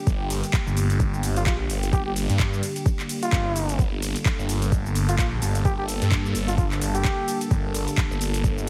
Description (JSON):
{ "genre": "bass house", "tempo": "129 BPM", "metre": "4/4", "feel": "swing 57% on 16ths", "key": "G minor", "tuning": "A4 = 440 Hz", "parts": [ { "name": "sweeping resonant pad", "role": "sustained chords", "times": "0.0-8.7 s", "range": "D3 to A4", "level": "-34 LUFS", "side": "equal", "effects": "chorus, sidechain pumping" }, { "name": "phased detuned saw bass", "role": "bass", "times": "0.1-8.7 s", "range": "G1 to G2", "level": "-27 LUFS", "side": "equal", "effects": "phaser, overdrive, sidechain pumping" }, { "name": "electronic kick drum", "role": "drums", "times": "0.1-8.5 s", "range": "none", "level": "-25 LUFS", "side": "equal", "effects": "overdrive" }, { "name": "garage drum kit", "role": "drums", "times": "0.1-8.7 s", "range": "handclaps, hi-hat, ride cymbal, shaker", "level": "-33 LUFS", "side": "equal", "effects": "overdrive" }, { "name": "trumpet with bucket mute", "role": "melody", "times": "1.4-7.4 s", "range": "F4 to G4", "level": "-32 LUFS", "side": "equal", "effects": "digital delay" } ], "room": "light reverb", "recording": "heavily compressed radio sound, multiband compression", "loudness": "-24 LUFS", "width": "mono", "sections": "0.0-8.7 A section", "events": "none", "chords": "0.0 Gm" }